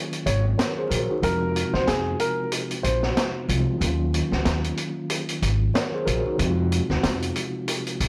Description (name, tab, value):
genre	hip hop, boom-bap hip-hop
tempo	93 BPM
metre	4/4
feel	swing 57% on 16ths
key	Eb dorian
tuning	A4 = 441 Hz
part	mellow tine electric piano	accompaniment	0.0-8.1 s	C3 to Db5	-30 LUFS	equal	cassette tape, high-pass filter, low-pass filter
part	vintage drum kit	drums	0.1-8.1 s	hi-hat, snare drum	-29 LUFS	equal	none
part	warm upright piano	melody	0.3-3.0 s	Ab4 to Db5	-29 LUFS	equal	high-pass filter, low-pass filter, digital delay
part	upright bass	bass	0.3-8.1 s	Ab1 to F2	-27 LUFS	equal	tube saturation
room	light reverb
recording	blown-out, overdriven recording, vinyl crackle, overdrive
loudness	-24 LUFS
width	mono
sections	0.0-8.1 A section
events	break 0.0-8.1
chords	0.0 Ebm7; 1.2 Fm; 3.8 Ebm7; 6.4 Fm